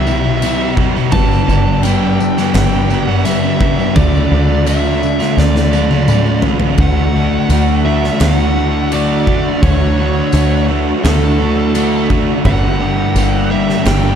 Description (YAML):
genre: rock, shoegaze and dream pop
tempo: 85 BPM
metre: 4/4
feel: straight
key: D mixolydian, D major from 6.8 s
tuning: A4 = 440 Hz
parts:
  - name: fuzz lead guitar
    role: melody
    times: 0.0-14.2 s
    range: A4 to A5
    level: -21 LUFS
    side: right 1 dB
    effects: distortion, tape echo
  - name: string machine, full ensemble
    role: sustained chords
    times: 0.0-14.2 s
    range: D4 to D6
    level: -26 LUFS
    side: equal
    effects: ensemble chorus
  - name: electric guitar through a small old amp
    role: arpeggios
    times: 0.0-14.2 s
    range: E3 to G4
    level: -25 LUFS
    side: right 1 dB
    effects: wide subtle chorus, tape echo
  - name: overdriven electric guitar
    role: riff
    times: 0.0-14.2 s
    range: G2 to G4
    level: -18 LUFS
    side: right 12 dB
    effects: reverse reverb
  - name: thick fuzz guitar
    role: riff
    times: 0.0-14.2 s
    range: G2 to D4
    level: -17 LUFS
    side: left 9 dB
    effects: distortion, wide subtle chorus
  - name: overdriven picked electric bass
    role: bass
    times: 0.0-14.2 s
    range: G1 to D2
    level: -16 LUFS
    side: equal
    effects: none
  - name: tambourine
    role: percussion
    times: 0.1-13.3 s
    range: none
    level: -33 LUFS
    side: left 10 dB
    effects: none
  - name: huge arena drum kit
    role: drums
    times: 0.4-14.0 s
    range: crash cymbal, kick drum, snare drum, toms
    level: -19 LUFS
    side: equal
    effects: none
room: small room reverb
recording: dark, warm production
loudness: -11 LUFS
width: side -8 dB against mid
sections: 0.0-6.8 A section; 6.8-14.2 B section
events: drum fill 5.4-6.8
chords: 0.0 C; 1.1 G; 4.0 D; 6.8 Dmaj9; 12.5 Gm6